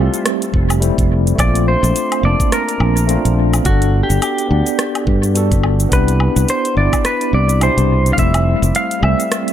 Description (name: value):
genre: sunset chillout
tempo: 106 BPM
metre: 4/4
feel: swing 58% on 16ths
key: unclear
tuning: A4 = 440 Hz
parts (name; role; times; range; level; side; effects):
- clean electric guitar; melody; 0.0-9.5 s; F4 to F5; -20 LUFS; equal; dub echo
- tine electric piano; accompaniment; 0.0-9.5 s; B2 to A5; -19 LUFS; moving between left 5 dB and right 6 dB; medium stereo tremolo, auto-pan, dub echo
- fretless electric bass; bass; 0.0-9.1 s; F1 to G2; -14 LUFS; equal; tube saturation
- smooth R&B drum kit; drums; 0.1-9.5 s; hi-hat, rim click, shaker, woodblock; -23 LUFS; left 1 dB; dub echo
- electronic kick drum; drums; 0.5-8.3 s; none; -17 LUFS; equal; none
room: light reverb, digital ambience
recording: echo-heavy mix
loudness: -12 LUFS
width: side -10 dB against mid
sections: 0.0-9.5 A section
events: none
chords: 0.0 Fmaj9; 1.4 Bbmaj9; 3.7 Gmaj9; 5.9 Cmaj9; 8.2 Fmaj9